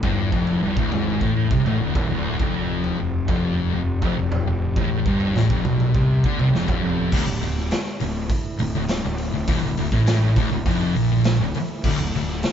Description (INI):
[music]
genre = stoner and doom metal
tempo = 102 BPM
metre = 4/4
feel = straight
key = D minor from 7.1 s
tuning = A4 = 440 Hz
[part]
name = metallic inharmonic drone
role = sustained chords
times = 0.0-12.5 s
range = D3 to G4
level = -35 LUFS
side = right 2 dB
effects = chorus, built-in reverb
[part]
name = thick fuzz guitar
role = riff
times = 0.0-12.4 s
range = D2 to D3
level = -23 LUFS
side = left 6 dB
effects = distortion
[part]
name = thick fuzz guitar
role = riff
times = 0.0-12.4 s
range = D2 to D3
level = -24 LUFS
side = right 6 dB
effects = distortion
[part]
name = fuzz fingered electric bass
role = bass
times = 0.0-12.4 s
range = D1 to D2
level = -29 LUFS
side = equal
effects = overdrive
[part]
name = raw garage drum kit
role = drums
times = 0.0-12.5 s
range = crash cymbal, hi-hat, kick drum, snare drum, toms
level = -25 LUFS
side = right 1 dB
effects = none
[sound]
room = moderate studio reverb, RT60 0.8 s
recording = band playing live in one room, nothing above 7.7 kHz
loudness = -19 LUFS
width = side -8 dB against mid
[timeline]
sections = 0.0-7.1 A section; 7.1-12.5 B section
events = none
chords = 0.0 Dm; 2.4 F5; 7.1 Dm